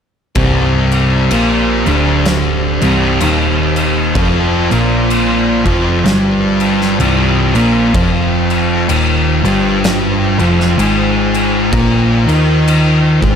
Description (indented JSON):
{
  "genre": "stoner and doom metal",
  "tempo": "63 BPM",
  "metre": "4/4",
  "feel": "swing 58% on 8ths",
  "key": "C minor",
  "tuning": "A4 = 437 Hz",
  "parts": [
    { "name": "tonewheel organ", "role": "sustained chords", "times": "0.3-13.4 s", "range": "C4 to G5", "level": "-23 LUFS", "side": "right 1 dB", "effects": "slow rotary speaker" },
    { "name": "thick fuzz guitar", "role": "riff", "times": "0.4-13.4 s", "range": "C2 to Eb4", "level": "-15 LUFS", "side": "left 8 dB", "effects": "distortion" },
    { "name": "thick fuzz guitar", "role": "riff", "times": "0.4-13.4 s", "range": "C2 to Eb4", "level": "-16 LUFS", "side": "right 9 dB", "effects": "distortion" },
    { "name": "hollow-body short-scale picked electric bass", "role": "bass", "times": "0.4-13.4 s", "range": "C1 to Eb2", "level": "-17 LUFS", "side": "equal", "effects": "overdrive" },
    { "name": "oversized low-tuned drum kit", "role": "drums", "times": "0.4-13.4 s", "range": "crash cymbal, kick drum, snare drum", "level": "-18 LUFS", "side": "equal", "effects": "none" }
  ],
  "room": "moderate studio reverb, RT60 0.6 s",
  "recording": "none",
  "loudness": "-10 LUFS",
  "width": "side -7 dB against mid",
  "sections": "0.4-13.4 A section",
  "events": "none",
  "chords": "0.4 Cm; 7.9 F5"
}